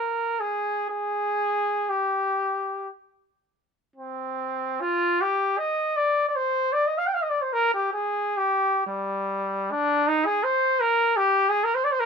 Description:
classical, free, expressive piece for unaccompanied trumpet; 47-83 BPM; 3/4; rubato; A4 = 438 Hz
warm trumpet; solo; 0.0-12.1 s; G3 to G5; -22 LUFS; equal
light reverb; minimal, uncompressed stereo recording; -22 LUFS; side -6 dB against mid
0.0-4.0 A section; 4.0-12.1 B section

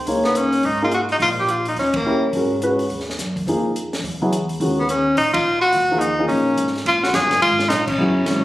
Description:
jazz, small-group swing and bop; 212 BPM; 4/4; swing 61% on 8ths; Eb minor; A4 = 436 Hz
upright bass; bass; 0.0-8.4 s; Gb1 to Bb2; -28 LUFS; equal
warm grand piano; accompaniment; 0.1-8.4 s; Eb3 to Db5; -20 LUFS; equal
compact cocktail drum kit; drums; 0.1-8.3 s; crash cymbal, hi-hat, kick drum, ride cymbal, snare drum; -28 LUFS; equal
breathy tenor saxophone; melody; 0.3-2.2, 4.8-8.4 s; Bb3 to Ab4; -17 LUFS; equal
moderate large studio reverb, RT60 0.9 s; recorded on a phone in the room, club reverb, compression; -17 LUFS; side -16 dB against mid
0.0-6.9 A section; 6.9-8.4 B section
band accent 1.9, 5.3, 7.8
0.1 Dbsus2; 1.2 Ebadd9/Bb (rootless); 1.8 Eb7b9; 2.3 Abm9; 3.5 Fm7; 4.0 Eadd9; 4.6 Eb9sus4; 6.9 Bb5

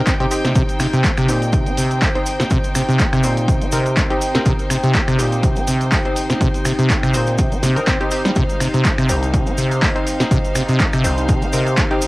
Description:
acid house; 123 BPM; 4/4; swing 55% on 16ths; C minor; A4 = 440 Hz
dark analog pad; sustained chords; 0.2-12.1 s; C4 to G5; -26 LUFS; equal; chorus, phaser, sidechain pumping, cassette tape
filtered dub chord stab; stabs; 0.0-12.0 s; C4 to C5; -24 LUFS; left 1 dB; chorus, cassette tape, analog delay
clear studio string section; texture; 0.0-12.1 s; Eb4 to G5; -27 LUFS; left 1 dB; sidechain pumping, cassette tape
acid bass, saw; riff; 0.1-11.8 s; C2 to C4; -19 LUFS; equal; wide subtle chorus, cassette tape, analog delay
electronic kick drum; drums; 0.1-11.9 s; -19 LUFS; equal; overdrive, cassette tape
punchy analog drum machine; drums; 0.1-12.1 s; finger snaps, handclaps, hi-hat, snare drum; -23 LUFS; equal; overdrive, cassette tape
cabasa; percussion; 0.1-12.1 s; -32 LUFS; right 1 dB
light reverb; home recording on cassette; -15 LUFS; side -20 dB against mid
0.0-12.1 A section
0.0 Cm

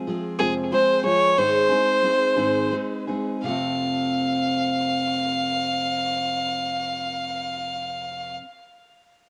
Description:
rock; 54-63 BPM (dotted quarters); 6/8; straight; A4 = 441 Hz
picked steel-string acoustic guitar; accompaniment; 0.0-8.5 s; F2 to A4; -29 LUFS; equal; cassette tape
clear fiddle; melody; 0.4-8.4 s; Ab4 to F5; -24 LUFS; equal; cassette tape, tape echo
light reverb, studio reverb; home recording on cassette; -23 LUFS; mono
0.0-3.4 A section; 3.4-7.9 B section
slowing down 0.0-3.4
0.0 Fm; 1.4 Ab; 3.4 F

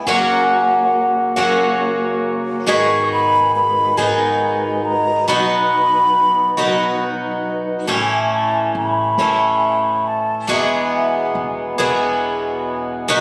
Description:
acoustic folk duo or small band; 46 BPM (dotted quarters); 6/8; straight; B major; A4 = 440 Hz
baroque flute; melody; 0.0-11.4 s; E5 to C#6; -19 LUFS; equal
picked twelve-string acoustic guitar; accompaniment; 0.0-13.2 s; E2 to G#4; -20 LUFS; equal
mellow tonewheel organ; sustained chords; 0.0-7.9 s; F#3 to C#5; -30 LUFS; equal; slow rotary speaker, chorus vibrato
upright bass; bass; 0.0-13.2 s; E1 to G#2; -34 LUFS; equal
moderate studio reverb, RT60 0.7 s; recorded on a phone in the room, studio reverb; -17 LUFS; mono
0.0-7.9 A section; 7.9-13.2 B section
flute solo 7.9-13.2
0.1 F#; 2.7 G#m7; 5.3 B; 7.9 A; 10.5 Eadd9

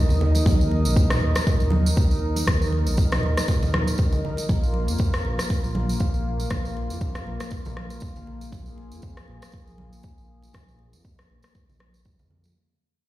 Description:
afro house; 119 BPM; 4/4; swing 56% on 16ths; A4 = 440 Hz
warm analog pad; sustained chords; 0.0-12.5 s; Bb3 to Eb5; -31 LUFS; right 1 dB; chorus, sidechain pumping
dark detuned saw bass; bass; 0.1-12.5 s; Bb1 to F2; -25 LUFS; equal; tube saturation, sidechain pumping
congas; percussion; 0.1-12.5 s; -30 LUFS; right 1 dB
tambourine; percussion; 0.1-12.5 s; -36 LUFS; right 3 dB
electronic kick drum; drums; 0.5-12.2 s; -22 LUFS; equal
deep house drum kit; drums; 1.1-11.9 s; rim click, toms; -29 LUFS; left 1 dB
light reverb, digital ambience; played on a big sound system in a bare room, stone room reverb; -20 LUFS; side -16 dB against mid
0.0-12.6 A section
fade-out 0.0-12.6
0.0 Eb5; 4.5 Bb5

